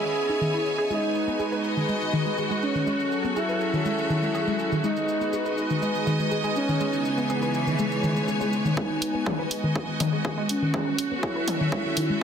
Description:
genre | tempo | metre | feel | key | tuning
melodic techno | 122 BPM | 4/4 | straight | G# phrygian | A4 = 443 Hz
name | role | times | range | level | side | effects
expressive portamento lead | melody | 0.0-12.2 s | G#3 to G#4 | -28 LUFS | equal | chorus, sidechain pumping, digital delay
warm analog pad | sustained chords | 0.0-12.2 s | C#3 to E5 | -31 LUFS | right 1 dB | chorus, sidechain pumping
techno drum kit | drums | 0.0-12.1 s | hi-hat, shaker, toms | -33 LUFS | left 1 dB | sidechain pumping on perc, high-pass filter on perc, low-pass filter on perc, sidechain pumping on hats, high-pass filter on hats, low-pass filter on hats, sidechain pumping on toms, high-pass filter on toms, low-pass filter on toms, high-pass filter on room, low-pass filter on room
clear symphonic string section | texture | 0.0-12.2 s | E3 to G#5 | -29 LUFS | equal | sidechain pumping
analog pluck | arpeggios | 0.3-12.2 s | D#3 to B4 | -28 LUFS | left 1 dB | chorus, cassette tape, sidechain pumping, tape echo
electronic kick drum | drums | 8.8-11.8 s | none | -31 LUFS | equal | high-pass filter on kick, high-pass filter on room
room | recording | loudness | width
light reverb | dense, heavily limited modern master | -23 LUFS | side -8 dB against mid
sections
0.0-8.8 A section; 8.8-12.2 B section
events
build-up 8.8-12.2; filter sweep on synth pluck 8.8-12.2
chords
0.0 C#m7; 0.9 G#m7; 2.9 F#m7; 4.8 G#m7; 6.8 C#m7; 8.8 G#m7; 10.7 F#m7

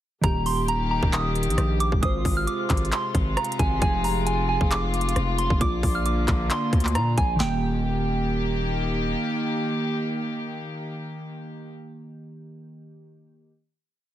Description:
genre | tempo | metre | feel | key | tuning
hip hop, trap | 134 BPM | 4/4 | half-time | Eb major | A4 = 440 Hz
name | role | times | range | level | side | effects
soft synth bell | melody | 0.2-8.7 s | G5 to F6 | -28 LUFS | right 2 dB | chorus, low-pass filter, ping-pong delay
glassy digital keys | accompaniment | 0.2-13.5 s | Eb3 to D5 | -31 LUFS | right 2 dB | chorus, low-pass filter
warm studio string section | sustained chords | 0.2-11.7 s | C3 to G4 | -29 LUFS | left 2 dB | none
distorted 808-style bass | bass | 0.2-9.2 s | Eb1 to Bb2 | -26 LUFS | equal | distortion
trap drum kit | drums | 0.2-7.5 s | handclaps, hi-hat, kick drum, rim click, snare drum | -26 LUFS | equal | overdrive
room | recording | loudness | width
light reverb, digital ambience | heavily compressed radio sound, multiband compression | -22 LUFS | side -12 dB against mid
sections
0.2-7.4 hook; 7.4-11.0 final chord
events
none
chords
0.2 Eb; 2.0 Ab6; 3.8 Fm; 5.6 Bb; 7.4 Eb

